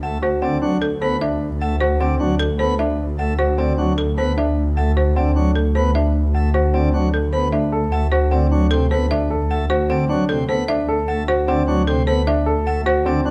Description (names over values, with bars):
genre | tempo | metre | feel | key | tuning
classical, minimalist pattern music | 152 BPM | 4/4 | straight | D mixolydian | A4 = 441 Hz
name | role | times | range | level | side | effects
folk marimba with hard mallets | melody | 0.0-13.3 s | A4 to F#5 | -26 LUFS | equal | none
pipe organ, plenum | accompaniment | 0.0-13.3 s | C3 to B3 | -27 LUFS | equal | none
warm studio double bass section | bass | 0.0-13.3 s | D2 | -22 LUFS | equal | none
dark grand piano | arpeggios | 0.2-13.3 s | C4 to A4 | -25 LUFS | equal | none
room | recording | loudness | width
light reverb | close, detailed microphones | -19 LUFS | mono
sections
0.0-13.3 A section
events
none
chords
0.0 D7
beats
0.03 0.43 0.82 | 1.22 1.61 2.00 2.40 | 2.79 3.19 3.58 3.98 | 4.37 4.77 5.16 5.56 | 5.95 6.35 6.74 7.14 | 7.53 7.93 8.32 8.72 | 9.11 9.51 9.90 10.29 | 10.69 11.08 11.48 11.87 | 12.27 12.66 13.06